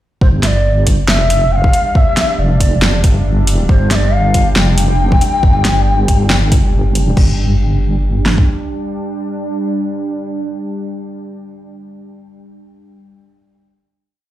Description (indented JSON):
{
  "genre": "deep dubstep",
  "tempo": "138 BPM",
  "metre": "4/4",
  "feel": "swing 56% on 16ths, half-time",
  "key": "unclear",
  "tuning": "A4 = 444 Hz",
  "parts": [
    { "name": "breathy reedy low ney", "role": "melody", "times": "0.2-6.7 s", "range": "C5 to G5", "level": "-19 LUFS", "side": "left 2 dB", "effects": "vintage 12-bit sampler grit, dub echo" },
    { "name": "deep dark ambient pad", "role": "sustained chords", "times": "0.7-11.5 s", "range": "G3 to D4", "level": "-22 LUFS", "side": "right 1 dB", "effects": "chorus, built-in reverb" },
    { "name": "deep soft wobble bass", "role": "bass", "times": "0.2-8.4 s", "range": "F1 to G1", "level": "-13 LUFS", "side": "equal", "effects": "chorus" },
    { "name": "deep house drum kit", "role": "drums", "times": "0.2-8.5 s", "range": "kick drum, snare drum", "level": "-12 LUFS", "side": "equal", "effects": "none" },
    { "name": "deep house drum kit", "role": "drums", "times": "0.4-7.3 s", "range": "crash cymbal, hi-hat, snare drum", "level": "-18 LUFS", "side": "equal", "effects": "none" }
  ],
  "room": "light reverb, digital ambience",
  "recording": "played on a big sound system in a bare room, stone room reverb",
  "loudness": "-11 LUFS",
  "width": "side -14 dB against mid",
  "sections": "0.2-7.2 drop; 7.2-10.6 final chord",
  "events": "drop 0.2-7.2",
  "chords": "0.2 G5",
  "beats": "| 0.21 0.65 1.08 1.52 | 1.95 2.39 2.82 3.26 | 3.69 4.13 4.56 5.00 | 5.43 5.87 6.30 6.74 | 7.17 7.61 8.04 8.47 | 8.91 9.34 9.78 10.21"
}